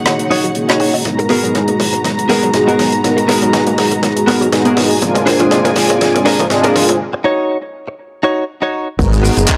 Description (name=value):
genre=nu-disco, nu disco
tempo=121 BPM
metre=4/4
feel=swing 54% on 16ths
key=G# minor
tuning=A4 = 440 Hz
part: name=mellow synth brass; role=accompaniment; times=0.0-9.6 s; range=G#3 to A#4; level=-18 LUFS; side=equal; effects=chorus, vintage 12-bit sampler grit, sidechain pumping, analog delay
part: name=warm studio string section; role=sustained chords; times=0.0-7.0 s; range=D#3 to A#5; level=-22 LUFS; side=equal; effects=sidechain pumping
part: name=analog pluck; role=arpeggios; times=0.1-9.6 s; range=E#3 to F#4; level=-25 LUFS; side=equal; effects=none
part: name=tight funk drum kit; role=drums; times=0.1-9.6 s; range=crash cymbal, handclaps, hi-hat, rim click, shaker, toms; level=-20 LUFS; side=equal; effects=high-pass filter on hats, high-pass filter on toms, high-pass filter on cymbals, high-pass filter on snare, high-pass filter on perc, high-pass filter on room
part: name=direct-recorded clean electric guitar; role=riff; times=0.3-9.4 s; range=B3 to C#5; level=-19 LUFS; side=equal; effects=analog chorus, low-pass filter
part: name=fingered electric bass with an envelope filter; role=bass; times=9.0-9.4 s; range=F#1 to G#1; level=-16 LUFS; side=equal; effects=tube saturation
part: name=electronic kick drum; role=drums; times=9.0-9.6 s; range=none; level=-18 LUFS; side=equal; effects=none
room=light reverb, small room ambience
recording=dry, gritty hardware recording, cassette tape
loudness=-14 LUFS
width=mono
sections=0.0-9.0 A section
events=build-up 0.0-9.0; drum fill 0.0-7.0; filter sweep on analog polysynth 0.0-9.0; break 7.0-9.0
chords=0.0 D#m7; 1.1 G#m9; 5.0 A#7; 7.0 D#m7; 9.0 G#m9